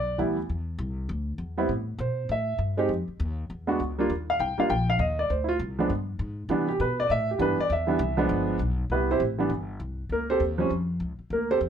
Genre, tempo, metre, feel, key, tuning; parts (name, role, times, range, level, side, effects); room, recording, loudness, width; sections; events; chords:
jazz piano trio; 200 BPM; 4/4; swing 62% on 8ths; C major; A4 = 440 Hz
warm concert grand piano; melody; 0.0-11.6 s; E3 to G5; -25 LUFS; right 2 dB
upright bass; bass; 0.0-11.7 s; G1 to C3; -30 LUFS; left 1 dB
light reverb; dark, warm production; -25 LUFS; side -8 dB against mid
0.0-8.9 A section; 8.9-11.7 B section
grand piano solo 8.9-11.7
0.5 E5; 1.7 Am7; 2.9 Ebsus2; 3.5 E7(no3); 4.1 Eb; 5.3 Dm7; 5.9 N.C.; 6.5 Cmaj7; 8.3 G7b9; 8.9 Cmaj7; 10.1 Aaug (rootless)